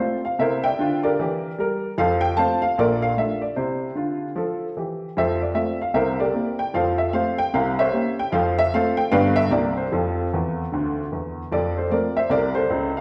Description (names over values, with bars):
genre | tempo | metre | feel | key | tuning
jazz, stride piano | 151 BPM | 4/4 | swing 62% on 8ths | F major | A4 = 440 Hz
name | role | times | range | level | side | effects
warm upright piano | solo | 0.0-13.0 s | G1 to A5 | -22 LUFS | equal | none
room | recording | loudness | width
wet recital hall reverb, RT60 1.4 s | recorded in a church or concert hall, nothing above 10.7 kHz | -22 LUFS | mono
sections
0.0-11.5 A section; 11.5-13.0 A section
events
upright piano fill 10.3-11.5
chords
0.4 C9; 2.0 F; 2.8 Bbmaj7; 3.6 C; 5.1 F; 5.9 C9; 6.7 F; 7.5 C7b9; 8.3 F; 9.1 G7; 9.5 C7; 9.9 F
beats
| 0.38 0.77 1.17 1.57 | 1.97 2.37 2.76 3.16 | 3.56 3.96 4.35 4.75 | 5.15 5.54 5.94 6.34 | 6.74 7.14 7.53 7.93 | 8.33 8.73 9.13 9.52 | 9.92 10.32 10.72 11.12 | 11.51 11.91 12.31 12.71